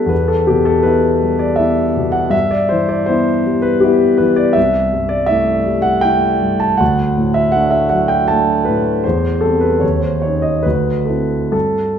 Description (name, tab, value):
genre	classical, romantic nocturne for solo piano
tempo	80 BPM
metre	3/4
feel	rubato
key	unclear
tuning	A4 = 440 Hz
part	warm concert grand piano	solo	0.0-12.0 s	C2 to A5	-12 LUFS	equal	none
room	wet scoring stage reverb, RT60 1.9 s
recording	minimal, uncompressed stereo recording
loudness	-12 LUFS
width	side -8 dB against mid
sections	0.0-12.0 A section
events	none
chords	0.1 Em; 2.3 Em/G; 4.6 Am7/C; 6.8 D; 9.0 C/E; 9.8 C#sus2/D#; 10.6 Dsus2